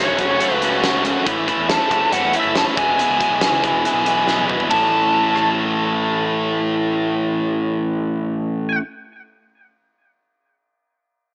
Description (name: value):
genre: classic rock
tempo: 139 BPM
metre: 4/4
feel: straight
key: A major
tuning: A4 = 440 Hz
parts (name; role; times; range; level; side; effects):
- fuzz lead guitar; melody; 0.0-8.8 s; C#5 to A5; -22 LUFS; equal; wah, distortion
- distorted electric guitar; riff; 0.0-8.8 s; E2 to A4; -22 LUFS; equal; overdrive
- tight distorted guitar; riff; 0.0-1.3 s; F#2 to F#4; -26 LUFS; equal; distortion
- overdriven picked electric bass; bass; 0.0-8.8 s; E1 to E2; -32 LUFS; equal; none
- huge arena drum kit; drums; 0.2-5.5 s; hi-hat, kick drum, ride cymbal, rim click, snare drum, toms; -27 LUFS; equal; none
room: light reverb, small room ambience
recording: small speaker sound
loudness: -18 LUFS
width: mono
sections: 0.0-4.7 A section; 4.7-8.2 B section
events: drum fill 4.3-4.7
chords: 0.0 F#m; 1.3 A; 2.8 E; 4.7 A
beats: 0.40 0.83 | 1.26 1.69 2.12 2.55 | 2.98 3.41 3.84 4.28 | 4.71 5.14 5.57 6.00 | 6.43 6.86 7.29 7.73